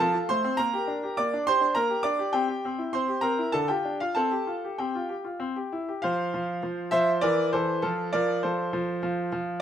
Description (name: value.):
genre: classical-period piano sonatina.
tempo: 101 BPM.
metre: 3/4.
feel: rubato.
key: F major.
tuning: A4 = 441 Hz.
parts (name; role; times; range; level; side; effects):
bright baby grand piano; solo; 0.0-9.6 s; D3 to D6; -24 LUFS; equal; none.
room: moderate recital hall reverb, RT60 1.3 s.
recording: close, detailed microphones.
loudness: -24 LUFS.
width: side -9 dB against mid.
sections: 0.0-6.0 A section; 6.0-9.6 B section.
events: none.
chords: 0.0 F; 0.6 Gm/Bb; 2.3 C; 3.5 Dmadd11; 4.2 Csus4; 5.4 C; 6.0 F5; 7.2 C7/E; 7.8 F.